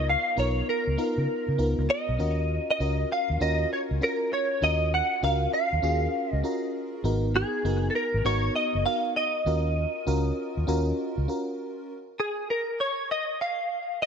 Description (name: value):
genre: R&B, new jack swing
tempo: 99 BPM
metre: 4/4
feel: swing 65% on 16ths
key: Eb minor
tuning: A4 = 440 Hz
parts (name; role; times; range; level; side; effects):
- direct-recorded clean electric guitar; melody; 0.0-14.1 s; Ab4 to Gb5; -27 LUFS; right 1 dB; ensemble chorus
- FM electric piano with soft pad layer; accompaniment; 0.0-11.9 s; Cb4 to Bb4; -31 LUFS; equal; chorus
- vintage muted fingered electric bass; bass; 0.0-11.3 s; Gb1 to Db3; -27 LUFS; equal; none
room: light reverb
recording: none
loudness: -24 LUFS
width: side -7 dB against mid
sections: 0.0-11.9 A section; 11.9-14.1 B section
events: none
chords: 0.0 Db13; 2.2 Ebm9; 7.0 Abm9; 9.5 Ebm9; 11.9 N.C.